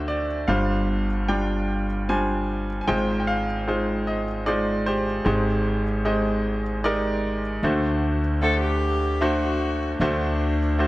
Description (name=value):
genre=acoustic folk-pop ballad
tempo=76 BPM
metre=3/4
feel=straight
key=unclear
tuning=A4 = 443 Hz
part: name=bright grand piano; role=melody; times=0.0-10.9 s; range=G1 to Ab5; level=-23 LUFS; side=equal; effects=none
part: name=upright bass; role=bass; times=0.0-10.9 s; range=G1 to D2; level=-27 LUFS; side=equal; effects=none
part: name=warm cello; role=second line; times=8.4-10.9 s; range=D4 to A4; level=-27 LUFS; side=left 1 dB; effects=none
room=moderate large studio reverb, RT60 1.5 s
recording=none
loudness=-21 LUFS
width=side -18 dB against mid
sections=0.0-10.0 A section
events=none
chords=0.5 G7sus4; 2.9 Fm7/Ab; 7.6 D7